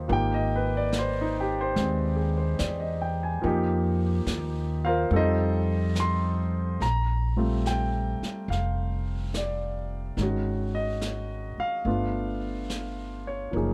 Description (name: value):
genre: jazz ballad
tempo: 72 BPM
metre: 4/4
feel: swing 66% on 8ths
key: Bb major from 6.8 s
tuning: A4 = 441 Hz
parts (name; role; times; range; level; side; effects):
- warm grand piano; accompaniment; 0.0-13.7 s; Eb3 to C6; -30 LUFS; equal; none
- upright bass; bass; 0.0-13.7 s; F1 to F2; -30 LUFS; equal; none
- jazz brush drum kit; drums; 0.1-13.7 s; brushed snare drum, hi-hat, snare drum; -39 LUFS; equal; none
room: little or no reverb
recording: none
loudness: -27 LUFS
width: mono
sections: 0.0-6.8 A section; 6.8-13.7 B section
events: none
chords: 0.1 Abmaj7; 3.4 F9sus4; 5.1 F7; 6.8 Bb5; 10.2 Ab5; 11.9 G9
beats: | 0.10 0.93 1.77 2.60 | 3.44 4.28 5.12 5.96 | 6.81 7.65 8.50 9.34 | 10.18 11.02 11.86 12.69 | 13.53